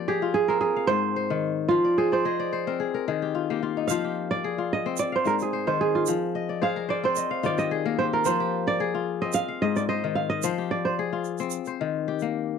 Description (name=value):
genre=west african traditional, West African string and xylophone music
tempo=110 BPM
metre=4/4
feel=straight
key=F dorian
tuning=A4 = 440 Hz
part: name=kora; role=arpeggios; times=0.0-12.6 s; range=Ab2 to F5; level=-27 LUFS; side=left 10 dB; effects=none
part: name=kora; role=melody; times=0.1-11.8 s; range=F4 to F5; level=-25 LUFS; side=right 5 dB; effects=none
part: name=egg shaker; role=percussion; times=3.9-12.3 s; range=none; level=-35 LUFS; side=right 34 dB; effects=none
room=little or no reverb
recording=dry, close 1970s-style studio recording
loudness=-23 LUFS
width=side -6 dB against mid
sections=0.0-12.6 A section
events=kora solo 0.0-12.6; kora fill 1.8-3.9, 6.3-8.3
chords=0.0 Fm; 0.6 Ab; 1.7 Fm; 2.8 Eb5; 3.9 Fm; 5.0 Ab; 6.1 Fm; 7.2 Eb5; 8.3 Fm; 9.3 Ab; 10.4 Fm; 11.5 Eb